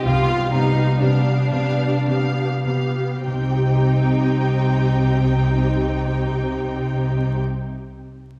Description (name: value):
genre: classical, slow romantic movement for symphony orchestra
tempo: 47-67 BPM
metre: 3/4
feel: rubato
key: C minor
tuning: A4 = 440 Hz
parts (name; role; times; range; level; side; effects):
- warm studio violin section; melody; 0.0-7.4 s; F5 to G5; -34 LUFS; equal; none
- warm studio violin section; second line; 0.0-7.4 s; D4 to F4; -29 LUFS; equal; none
- dark studio viola section; accompaniment; 0.0-7.4 s; B3 to G4; -28 LUFS; equal; none
- concert harp; arpeggios; 0.0-7.7 s; C3 to F5; -25 LUFS; equal; none
- warm chamber double bass section; bass; 0.1-7.4 s; C2; -26 LUFS; equal; none
- warm symphonic cello section; bass; 0.1-7.4 s; C3; -27 LUFS; equal; none
room: wet concert hall reverb, RT60 2.1 s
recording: heard from further back in the room, vinyl crackle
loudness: -20 LUFS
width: mono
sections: 0.0-3.3 A section; 3.3-6.6 B section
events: slowing down 0.0-3.3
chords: 0.1 G7/C; 3.3 Cm